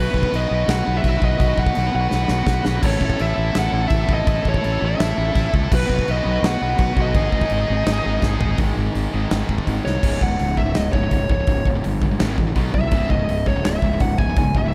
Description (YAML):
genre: heavy metal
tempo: 167 BPM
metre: 4/4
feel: straight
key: C# minor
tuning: A4 = 440 Hz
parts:
  - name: high-gain lead guitar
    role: melody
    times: 0.0-14.7 s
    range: B4 to G#5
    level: -27 LUFS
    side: equal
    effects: distortion, digital delay
  - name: high-gain distorted guitar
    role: riff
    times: 0.0-14.7 s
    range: C#2 to B4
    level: -29 LUFS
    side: equal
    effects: distortion
  - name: fuzz fingered electric bass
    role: bass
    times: 0.0-14.7 s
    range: C#1 to C#2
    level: -24 LUFS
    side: equal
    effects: overdrive
  - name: big rock drum kit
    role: drums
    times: 0.1-14.6 s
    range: china cymbal, crash cymbal, hi-hat, kick drum, snare drum, toms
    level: -24 LUFS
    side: equal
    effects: none
room: light reverb, studio reverb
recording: none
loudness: -20 LUFS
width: mono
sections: 0.0-8.6 A section; 8.6-10.0 B section; 10.0-14.7 C section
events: drum fill 2.1-2.8, 8.2-8.6, 9.9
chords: 0.0 B; 2.8 A; 5.7 B; 7.1 G#5; 10.0 C#5; 12.2 G#5; 12.6 B5; 12.9 C#m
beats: 0.32 0.68 1.04 | 1.40 1.76 2.12 2.48 | 2.83 3.19 3.55 3.91 | 4.27 4.63 4.99 5.35 | 5.71 6.07 6.43 6.79 | 7.15 7.51 7.87 8.23 | 8.59 8.95 9.31 9.67 | 10.03 10.39 10.75 11.12 | 11.48 11.84 12.20 12.56 | 12.92 13.28 13.64 14.00 | 14.36 14.72